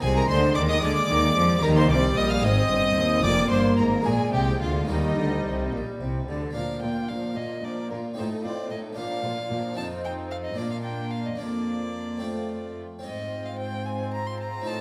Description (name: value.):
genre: classical, baroque-style concerto movement with solo episodes.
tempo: 74 BPM (dotted quarters).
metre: 6/8.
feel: straight.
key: Eb major, Bb major from 6.6 s.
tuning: A4 = 440 Hz.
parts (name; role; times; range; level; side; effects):
clear violin; melody; 0.0-14.8 s; Eb4 to C6; -32 LUFS; equal; none.
rich studio violin section; melody; 0.0-14.8 s; F4 to F6; -37 LUFS; equal; none.
rich chamber violin section; second line; 0.0-14.8 s; C4 to F6; -37 LUFS; equal; none.
harpsichord; accompaniment; 0.0-14.8 s; Eb2 to Ab4; -36 LUFS; equal; none.
rich chamber viola section; accompaniment; 0.0-14.8 s; F3 to C4; -33 LUFS; equal; none.
rich chamber double bass section; bass; 0.0-6.5 s; F1 to F2; -29 LUFS; equal; none.
warm chamber cello section; bass; 0.0-14.8 s; Eb2 to F3; -32 LUFS; equal; none.
room: wet recital hall reverb, RT60 1.3 s.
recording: none.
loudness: -25 LUFS.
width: mono.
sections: 0.0-6.6 A section; 6.6-14.8 B section.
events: none.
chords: 0.0 Ab/C; 0.8 Bb7/D; 1.6 Eb; 2.4 Ab; 3.2 Fm; 4.1 Bb7; 4.9 Eb; 6.6 Bb; 8.2 F7/A; 9.0 Bb; 9.8 F5; 10.6 Bb; 11.4 Bb/F; 12.2 F; 13.0 Fm/Ab.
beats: | 0.04 0.83 | 1.64 2.44 | 3.24 4.06 | 4.89 5.72 | 6.55 7.37 | 8.18 8.98 | 9.78 10.58 | 11.39 12.21 | 13.04 13.85 | 14.66.